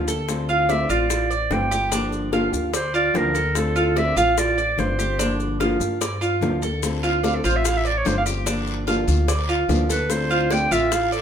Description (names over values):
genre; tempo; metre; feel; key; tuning
latin, Cuban son and guajira; 147 BPM; 4/4; straight; D minor; A4 = 440 Hz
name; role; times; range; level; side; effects
nylon-string guitar; accompaniment; 0.0-11.0 s; D3 to G4; -27 LUFS; left 4 dB; none
Cuban tres; arpeggios; 0.0-11.2 s; D4 to D5; -24 LUFS; right 3 dB; none
upright bass; bass; 0.0-11.2 s; G1 to G2; -26 LUFS; equal; none
bongos; percussion; 0.1-11.1 s; none; -30 LUFS; left 3 dB; none
maracas; percussion; 0.1-11.2 s; none; -32 LUFS; left 8 dB; none
clear clarinet; melody; 0.5-11.2 s; A4 to G5; -22 LUFS; right 2 dB; none
guiro; percussion; 6.8-11.2 s; none; -35 LUFS; left 6 dB; none
room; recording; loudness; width
moderate studio reverb, RT60 0.8 s; band playing live in one room; -19 LUFS; side -8 dB against mid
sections
0.0-11.2 A section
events
clarinet solo 0.0-11.2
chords
0.3 Dm7; 1.9 Gm7; 3.6 Dm7; 5.2 Gm7; 6.8 Dm7; 8.5 Gm7; 10.1 Dm7